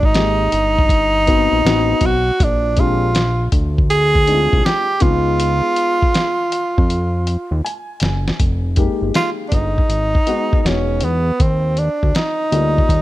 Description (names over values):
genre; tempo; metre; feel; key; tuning
hip hop, jazz-hop; 80 BPM; 4/4; swing 66% on 16ths; F dorian; A4 = 443 Hz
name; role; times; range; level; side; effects
breathy tenor saxophone; melody; 0.0-13.0 s; B3 to Ab4; -17 LUFS; right 1 dB; none
fat analog bass; bass; 0.0-13.0 s; E1 to F2; -19 LUFS; equal; none
lo-fi sampler-style drum kit; drums; 0.0-13.0 s; hi-hat, kick drum, snare drum; -17 LUFS; equal; none
dark upright piano; accompaniment; 0.1-13.0 s; G3 to Ab5; -22 LUFS; left 4 dB; none
room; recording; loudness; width
little or no reverb; none; -14 LUFS; side -15 dB against mid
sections
0.0-8.4 A section; 8.4-13.0 B section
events
drum fill 6.9-8.4; upright piano fill 7.3-8.4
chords
0.0 Abmaj9; 1.7 Adim7; 2.4 Bb9; 5.0 Db9; 8.4 Fm11; 10.7 Emaj9; 11.4 Ebmaj9